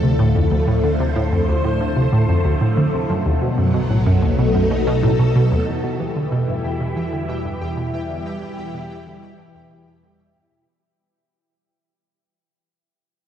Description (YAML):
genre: ambient, sequencer-driven space music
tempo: 93 BPM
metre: 4/4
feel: straight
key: E minor from 5.7 s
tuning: A4 = 443 Hz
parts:
  - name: phased string machine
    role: sustained chords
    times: 0.0-10.8 s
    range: B2 to C5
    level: -21 LUFS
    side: left 1 dB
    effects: ensemble chorus, phaser
  - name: analog pluck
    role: riff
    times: 0.0-10.8 s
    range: D2 to E3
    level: -19 LUFS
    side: equal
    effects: chorus, analog delay
  - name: fat analog bass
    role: bass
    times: 0.0-10.8 s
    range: B1 to E2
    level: -26 LUFS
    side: equal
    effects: tube saturation
  - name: pulsing gated texture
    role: texture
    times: 5.7-10.9 s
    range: G4 to G5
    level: -37 LUFS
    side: equal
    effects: chorus, built-in reverb
room: moderate huge ambient reverb, RT60 7.2 s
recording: dark, warm production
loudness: -16 LUFS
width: side -10 dB against mid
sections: 0.0-5.7 A section; 5.7-10.8 B section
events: fade-out on synth arpeggio sound 5.7-10.8; fade-out 5.7-10.8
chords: 0.0 Dmadd9; 3.1 B7; 5.7 Em